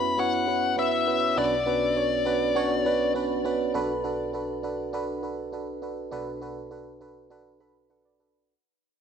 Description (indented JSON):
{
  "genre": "pop",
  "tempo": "101 BPM",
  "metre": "4/4",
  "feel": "straight",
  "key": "B minor",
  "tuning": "A4 = 440 Hz",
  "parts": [
    { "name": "bluesy overdriven lead guitar", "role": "melody", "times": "0.0-3.1 s", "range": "D5 to B5", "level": "-26 LUFS", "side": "left 5 dB", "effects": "distortion, digital delay" },
    { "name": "FM electric piano", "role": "accompaniment", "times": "0.0-8.5 s", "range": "B1 to B5", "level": "-27 LUFS", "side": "right 3 dB", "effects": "chorus" }
  ],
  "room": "moderate plate reverb, RT60 2.9 s",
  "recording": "none",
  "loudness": "-24 LUFS",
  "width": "side -7 dB against mid",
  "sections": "0.0-3.7 A section; 3.7-8.5 B section",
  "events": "fade-out 3.7-8.5; FM electric piano fill 7.3-8.5",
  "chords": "0.0 F#7sus4; 1.4 Bmadd9; 3.7 Bm7",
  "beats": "0.18 0.78 | 1.37 1.96 2.56 3.15 | 3.75 4.34 4.93 5.53 | 6.12 6.71 7.31 7.90"
}